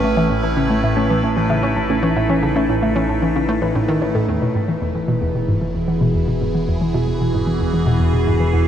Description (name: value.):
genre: ambient, sequencer-driven space music.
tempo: 113 BPM.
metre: 4/4.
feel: straight.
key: E major.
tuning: A4 = 441 Hz.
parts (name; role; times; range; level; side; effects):
evolving wavetable pad; sustained chords; 0.0-8.7 s; A2 to B4; -20 LUFS; right 1 dB; phaser, built-in reverb.
warbly dusty pluck; arpeggios; 0.0-8.6 s; C#4 to A5; -25 LUFS; left 2 dB; chorus, auto-pan, cassette tape, tape echo.
hollow square pluck; riff; 0.0-8.6 s; E2 to A3; -20 LUFS; equal; chorus, tape echo.
fat analog bass; bass; 0.0-8.7 s; E1 to A1; -24 LUFS; equal; tube saturation.
wind-like tuned noise texture; texture; 5.1-8.7 s; B3 to B4; -38 LUFS; left 1 dB; none.
room: moderate huge ambient reverb, RT60 7.7 s.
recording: worn, warbling old tape, cassette tape, warbly pitch drift.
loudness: -16 LUFS.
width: side -9 dB against mid.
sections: 0.0-4.3 A section; 4.3-8.7 B section.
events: filter sweep on synth arpeggio sound 4.3-8.7.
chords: 0.0 Aadd9; 4.3 Eadd9.